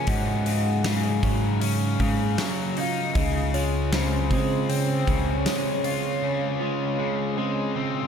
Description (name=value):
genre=rock, shoegaze and dream pop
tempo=78 BPM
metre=4/4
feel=straight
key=Db major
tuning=A4 = 441 Hz
part: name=soft octave-layered synth lead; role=melody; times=0.0-8.1 s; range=C5 to Ab5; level=-32 LUFS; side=equal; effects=chorus, phaser, tape echo
part: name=biting overdriven guitar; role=riff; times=0.0-8.1 s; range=Ab2 to F4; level=-28 LUFS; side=left 8 dB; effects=wide subtle chorus
part: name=direct-recorded clean electric guitar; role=riff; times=0.0-8.1 s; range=Ab2 to F4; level=-29 LUFS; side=right 10 dB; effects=reverse reverb
part: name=overdriven picked electric bass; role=bass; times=0.1-5.4 s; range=Db2 to Db3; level=-25 LUFS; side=equal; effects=none
part: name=big rock drum kit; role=drums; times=0.1-6.0 s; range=hi-hat, kick drum, snare drum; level=-29 LUFS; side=equal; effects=none
room=moderate lush hall reverb, RT60 3.0 s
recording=dreamy mix soaked in reverb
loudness=-22 LUFS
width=side -7 dB against mid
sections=0.0-8.1 A section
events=break 6.2-8.1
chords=0.1 Ab7sus4; 3.2 Dbmaj7